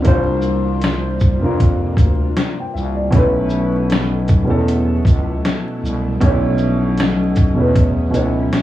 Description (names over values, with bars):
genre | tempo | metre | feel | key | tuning
lo-fi hip hop | 78 BPM | 4/4 | swing 55% on 16ths | B minor | A4 = 441 Hz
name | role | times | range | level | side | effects
dark upright piano | accompaniment | 0.0-8.6 s | B2 to G5 | -19 LUFS | right 1 dB | low-pass filter
string machine, violas | sustained chords | 0.0-8.6 s | B2 to F4 | -25 LUFS | left 2 dB | ensemble chorus, low-pass filter
trip hop sampler-style drum kit | drums | 0.0-8.6 s | hi-hat, kick drum, shaker, snare drum | -15 LUFS | equal | none
growling FM bass | bass | 0.1-8.5 s | B1 to F2 | -20 LUFS | left 1 dB | tube saturation
room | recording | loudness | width
light reverb | worn, warbling old tape, cassette tape, vinyl crackle, warbly pitch drift, small room ambience | -14 LUFS | side -14 dB against mid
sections
0.0-8.6 A section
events
none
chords
0.0 C9sus4; 3.1 B9sus4